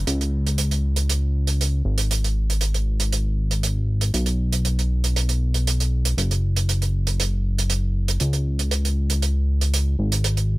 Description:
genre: nu-disco, nu disco.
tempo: 118 BPM.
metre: 4/4.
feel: straight.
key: G# minor.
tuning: A4 = 439 Hz.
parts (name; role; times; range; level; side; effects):
fat analog bass; bass; 0.0-10.6 s; F#1 to C#2; -20 LUFS; equal; none.
hi-hat; drums; 0.1-10.5 s; none; -25 LUFS; right 5 dB; studio ambience.
room: little or no reverb.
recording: none.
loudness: -20 LUFS.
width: side -19 dB against mid.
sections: 0.0-10.6 A section.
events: none.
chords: none.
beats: | 0.07 0.58 1.09 1.60 | 2.11 2.62 3.12 3.63 | 4.14 4.65 5.16 5.67 | 6.17 6.68 7.19 7.70 | 8.21 8.72 9.23 9.73 | 10.24.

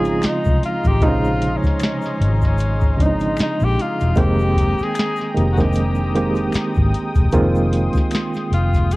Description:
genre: R&B, neo-soul.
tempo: 76 BPM.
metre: 4/4.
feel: swing 57% on 16ths.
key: unclear.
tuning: A4 = 440 Hz.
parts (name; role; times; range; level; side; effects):
breathy tenor saxophone; melody; 0.0-9.0 s; Db4 to Ab4; -24 LUFS; left 2 dB; cassette tape.
bright reed electric piano; accompaniment; 0.0-9.0 s; C3 to G5; -21 LUFS; right 2 dB; fast tremolo.
warm analog pad; sustained chords; 0.0-9.0 s; Ab3 to Eb6; -30 LUFS; left 2 dB; chorus.
vintage muted fingered electric bass; bass; 0.0-9.0 s; E1 to C2; -19 LUFS; equal; transformer saturation.
egg shaker and finger snaps; percussion; 0.0-9.0 s; none; -40 LUFS; left 6 dB; none.
soft vintage rhythm box; drums; 0.1-9.0 s; hi-hat, kick drum, snare drum; -20 LUFS; equal; none.
room: light reverb.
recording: home recording on cassette.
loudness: -16 LUFS.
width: side -20 dB against mid.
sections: 0.0-9.0 A section.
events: none.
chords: 0.0 Bbm11; 4.2 Fm11.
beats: 0.22 | 1.01 1.80 2.59 3.38 | 4.17 4.96 5.75 6.54 | 7.33 8.12 8.91.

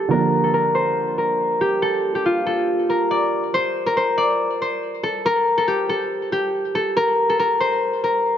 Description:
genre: hip hop.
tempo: 140 BPM.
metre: 4/4.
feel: half-time.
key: unclear.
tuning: A4 = 440 Hz.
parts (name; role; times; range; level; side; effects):
concert harp; melody; 0.0-8.4 s; F4 to D5; -18 LUFS; left 1 dB; low-pass filter, ping-pong delay.
dark grand piano; accompaniment; 0.0-3.6 s; D3 to D4; -26 LUFS; right 6 dB; low-pass filter.
room: moderate plate reverb, RT60 2.8 s.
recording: dark, warm production, nothing above 7.9 kHz.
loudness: -18 LUFS.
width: side -9 dB against mid.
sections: 0.0-3.5 A section; 3.5-8.4 B section.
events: none.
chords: 0.1 Bb; 3.5 N.C..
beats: | 0.11 0.54 0.97 1.40 | 1.82 2.25 2.68 3.11 | 3.54 3.97 4.39 4.82 | 5.25 5.68 6.11 6.54 | 6.97 7.39 7.82 8.25.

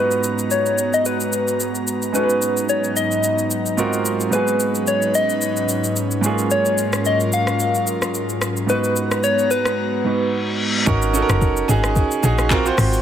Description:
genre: amapiano.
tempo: 110 BPM.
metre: 4/4.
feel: swing 55% on 16ths.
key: G# dorian.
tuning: A4 = 444 Hz.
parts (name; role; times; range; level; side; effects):
soft struck synth lead; melody; 0.0-10.6 s; B4 to E#5; -21 LUFS; left 2 dB; chorus, low-pass filter, tape echo.
clear concert grand piano; accompaniment; 0.0-13.0 s; G#2 to B#4; -22 LUFS; right 4 dB; none.
airy breathy pad; sustained chords; 0.0-10.8 s; G#2 to A#5; -25 LUFS; equal; chorus, sidechain pumping.
smooth R&B drum kit; drums; 0.1-13.0 s; handclaps, hi-hat, kick drum, rim click, shaker; -24 LUFS; left 1 dB; none.
reverse cymbal; sound effects; 10.1-10.9 s; none; -25 LUFS; left 3 dB; none.
woody log drum bass; bass; 10.9-13.0 s; F#1 to A#1; -19 LUFS; left 1 dB; none.
room: light reverb.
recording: none.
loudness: -17 LUFS.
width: side -9 dB against mid.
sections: 0.0-10.9 A section; 10.9-13.0 B section.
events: filter sweep 0.0-10.9; reverse cymbal 10.1-10.9; drop 10.9-13.0.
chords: 0.0 G#m9; 2.1 Bmaj7/G#; 3.8 G#13; 4.3 C#9sus4/G#; 6.2 F#maj7/G#; 8.7 G#m9; 10.9 F#69; 12.5 G#13.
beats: 0.51 1.05 1.60 | 2.14 2.69 3.23 3.78 | 4.33 4.87 5.42 5.96 | 6.51 7.05 7.60 8.14 | 8.69 9.23 9.78 10.33 | 10.87 11.42 11.96 12.51.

